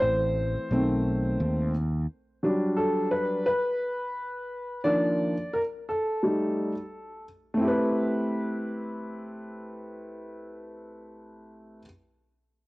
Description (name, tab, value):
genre	hip hop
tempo	87 BPM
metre	4/4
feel	swing 60% on 16ths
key	A dorian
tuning	A4 = 438 Hz
part	warm upright piano	accompaniment	0.0-11.9 s	D#3 to D5	-26 LUFS	equal	cassette tape, plate reverb
part	fretless electric bass	bass	0.0-2.1 s	A1 to D#2	-27 LUFS	equal	none
room	moderate studio reverb, RT60 0.6 s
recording	home recording on cassette, faint mains hum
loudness	-25 LUFS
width	side -21 dB against mid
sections	0.0-7.6 A section; 7.6-10.4 B section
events	upright piano solo 0.0-7.6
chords	0.0 F#m7b5 (rootless); 0.7 B7b9; 2.1 Gmaj9/F#; 4.8 Bbadd11/Eb; 6.2 Gsus2; 7.6 Am9